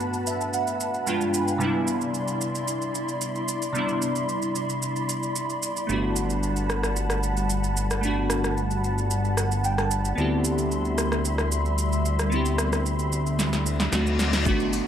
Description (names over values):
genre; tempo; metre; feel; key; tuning
amapiano; 112 BPM; 4/4; straight; G major; A4 = 438 Hz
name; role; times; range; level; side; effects
glassy digital keys; accompaniment; 0.0-14.9 s; G2 to B5; -28 LUFS; right 1 dB; chorus
glassy FM pad; sustained chords; 0.0-14.5 s; G3 to D6; -29 LUFS; equal; ensemble chorus, built-in reverb, tremolo, sidechain pumping
deep house drum kit; drums; 0.0-14.9 s; hi-hat, kick drum, rim click, shaker, snare drum; -29 LUFS; right 1 dB; overdrive
downlifter and reverse cymbal; sound effects; 0.0-1.6, 13.6-14.9 s; none; -34 LUFS; left 5 dB; none
fat analog bass; bass; 5.9-14.5 s; G1 to D2; -26 LUFS; equal; none
hollow log drum bass; bass; 14.5-14.8 s; G1; -31 LUFS; equal; none
room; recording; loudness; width
light reverb, digital ambience; none; -23 LUFS; side -9 dB against mid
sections
0.0-14.5 A section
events
synth keys fill 0.0-1.6, 9.1-10.2; drum fill 13.4-14.5; reverse cymbal 13.6-14.5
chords
0.0 Gmaj9; 1.1 G7b9; 1.6 Cmaj9; 5.9 Gmaj9; 10.2 D13sus4; 13.9 D7b9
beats
0.00 0.53 1.07 | 1.60 2.14 2.68 3.21 | 3.75 4.28 4.82 5.36 | 5.89 6.43 6.96 7.50 | 8.03 8.57 9.11 9.64 | 10.18 10.71 11.25 11.78 | 12.32 12.86 13.39 13.93 | 14.46